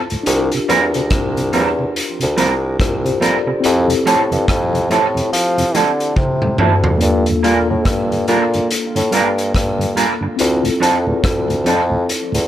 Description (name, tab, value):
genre	lovers rock reggae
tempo	71 BPM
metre	4/4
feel	swing 60% on 16ths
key	G dorian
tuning	A4 = 440 Hz
part	mellow tine electric piano	accompaniment	0.0-12.5 s	Bb3 to D5	-20 LUFS	left 2 dB	medium stereo tremolo, dub echo
part	tonewheel organ	accompaniment	0.1-12.4 s	D2 to F4	-24 LUFS	right 2 dB	slow rotary speaker, dub echo
part	vintage drum kit	drums	0.1-12.5 s	hi-hat, kick drum, rim click, toms	-20 LUFS	equal	none
part	warm bassoon	bass	0.3-12.5 s	C2 to F3	-18 LUFS	equal	none
part	electric guitar through a small old amp	stabs	0.7-11.8 s	F3 to Bb4	-19 LUFS	right 4 dB	tube saturation, wide subtle chorus
room	light reverb, small room ambience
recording	none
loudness	-14 LUFS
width	side -12 dB against mid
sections	0.0-12.5 A section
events	drum fill 6.2-7.0; tine electric piano fill 12.1-12.5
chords	0.3 C7sus4; 3.6 Fmaj7; 7.0 Gm7; 10.4 Dm7